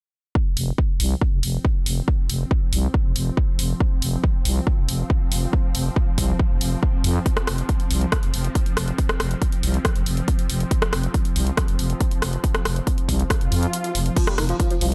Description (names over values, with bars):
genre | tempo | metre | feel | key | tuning
driving peak-time techno | 139 BPM | 4/4 | straight | unclear | A4 = 439 Hz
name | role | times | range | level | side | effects
swarming drone | drone | 1.5-14.9 s | F3 to C4 | -34 LUFS | equal | built-in reverb, sidechain pumping
electronic kick drum | drums | 0.4-14.7 s | none | -24 LUFS | equal | none
growling FM bass | bass | 0.6-14.9 s | F1 to F2 | -25 LUFS | equal | sidechain pumping
punchy analog drum machine | drums | 0.6-14.9 s | crash cymbal, hi-hat, rim click | -29 LUFS | equal | overdrive, sidechain pumping on hats, sidechain pumping on cymbals
swell | sound effects | 13.5-14.2 s | none | -33 LUFS | equal | none
overdriven synth lead | riff | 14.2-14.9 s | Eb3 to G3 | -29 LUFS | equal | analog chorus, sidechain pumping, delay
room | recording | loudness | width
digital ambience | none | -22 LUFS | mono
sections
0.4-14.9 A section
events
swell 13.5-14.2; kick drops out 13.7-14.2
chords
0.4 F5